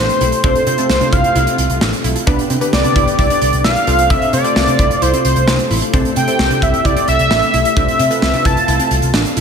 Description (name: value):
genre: synth-pop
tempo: 131 BPM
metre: 4/4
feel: straight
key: unclear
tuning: A4 = 439 Hz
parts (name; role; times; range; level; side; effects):
- octave-doubled lead; melody; 0.0-8.9 s; C5 to A5; -16 LUFS; equal; chorus, slapback echo, ping-pong delay
- lush unison pad; sustained chords; 0.0-9.4 s; C3 to G4; -22 LUFS; equal; chorus
- wide unison pluck; arpeggios; 0.0-9.4 s; C4 to F4; -24 LUFS; right 4 dB; slapback echo, ping-pong delay
- vintage muted picked electric bass; bass; 0.0-9.4 s; A1 to C3; -18 LUFS; equal; none
- modern studio drum kit; drums; 0.1-9.4 s; hi-hat, kick drum, snare drum; -18 LUFS; equal; none
- funky polysynth comp; accompaniment; 0.3-8.6 s; A3 to D5; -24 LUFS; equal; chorus, slapback echo
room: moderate lush hall reverb, RT60 1.9 s, small room ambience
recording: big arena sound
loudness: -12 LUFS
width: side -6 dB against mid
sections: 0.0-9.4 A section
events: none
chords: 0.4 F/C; 2.3 G/C; 3.9 F/C; 5.9 Am7/C; 7.8 F/C